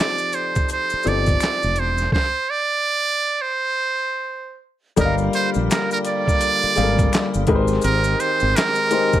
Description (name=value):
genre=R&B, neo-soul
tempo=84 BPM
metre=4/4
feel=swing 61% on 16ths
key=G phrygian from 5.0 s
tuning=A4 = 440 Hz
part: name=trumpet with metal mute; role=melody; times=0.0-9.2 s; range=Bb4 to D5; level=-20 LUFS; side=right 3 dB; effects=slapback echo
part: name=warm upright piano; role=accompaniment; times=0.0-9.2 s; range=F3 to F5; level=-23 LUFS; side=left 4 dB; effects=none
part: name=boom bap sampler-style drum kit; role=drums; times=0.0-9.2 s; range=handclaps, hi-hat, kick drum, snare drum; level=-21 LUFS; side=equal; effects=none
part: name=maracas and finger snaps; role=percussion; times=0.2-9.2 s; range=none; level=-34 LUFS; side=left 6 dB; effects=none
part: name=fretless electric bass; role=bass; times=0.9-8.5 s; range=E1 to Bb1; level=-21 LUFS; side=equal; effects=analog chorus
part: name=tonewheel organ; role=sustained chords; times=5.0-9.2 s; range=D3 to G4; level=-28 LUFS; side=equal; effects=fast rotary speaker, chorus vibrato
room=light reverb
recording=none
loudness=-18 LUFS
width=side -12 dB against mid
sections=0.0-5.0 A section; 5.0-9.2 B section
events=stop 2.1-5.0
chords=0.0 F13; 2.1 N.C.; 5.0 Gm7; 7.5 Abmaj7